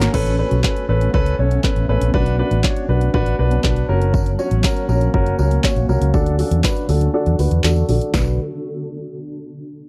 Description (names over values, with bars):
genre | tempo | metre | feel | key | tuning
dance-pop | 120 BPM | 4/4 | straight | B minor | A4 = 440 Hz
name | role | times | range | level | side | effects
warm concert grand piano | accompaniment | 0.0-8.4 s | C#4 to C#5 | -24 LUFS | equal | sidechain pumping, low-pass filter
granular cloud pad | sustained chords | 0.1-8.4 s | D3 to A4 | -30 LUFS | equal | built-in reverb, sidechain pumping, low-pass filter
vintage muted fingered electric bass | bass | 0.0-8.4 s | F#1 to E2 | -20 LUFS | equal | sidechain pumping
punchy analog drum machine | drums | 0.0-8.3 s | crash cymbal, handclaps, hi-hat, kick drum, shaker, snare drum | -22 LUFS | equal | none
tambourine | percussion | 4.1-8.4 s | none | -44 LUFS | equal | none
room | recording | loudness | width
digital ambience | dry, close 1970s-style studio recording | -18 LUFS | mono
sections
0.1-8.1 A section; 8.1-9.9 B section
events
filter sweep 0.1-8.1; kick muted 7.1-8.1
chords
0.1 Aadd9; 2.1 Bm; 3.9 F#; 6.1 D; 8.1 Bm